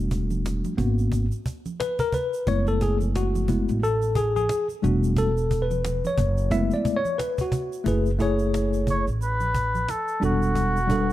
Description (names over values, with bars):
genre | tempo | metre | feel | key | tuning
hip hop, jazz-hop | 89 BPM | 4/4 | swing 58% on 16ths | F# minor | A4 = 441 Hz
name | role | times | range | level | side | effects
tine electric piano | accompaniment | 0.0-11.1 s | G3 to E5 | -25 LUFS | left 2 dB | medium stereo tremolo
upright bass | bass | 0.0-11.1 s | E1 to A1 | -25 LUFS | equal | none
cajon | drums | 0.1-11.1 s | none | -30 LUFS | right 1 dB | none
tube shaker and congas | percussion | 0.1-11.1 s | none | -36 LUFS | right 5 dB | none
trumpet with cup mute | melody | 8.9-11.1 s | F#4 to C#5 | -26 LUFS | equal | none
clear trombone | second line | 10.9-11.1 s | B3 | -36 LUFS | right 10 dB | none
room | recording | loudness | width
light reverb, small room reverb | dark, warm production | -22 LUFS | side -14 dB against mid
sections
0.0-7.9 A section; 7.9-11.1 B section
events
tine electric piano solo 0.0-7.9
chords
0.0 Em11; 0.8 G#m11; 2.5 F#m11; 4.8 Em11; 6.2 F#m11; 10.2 Em11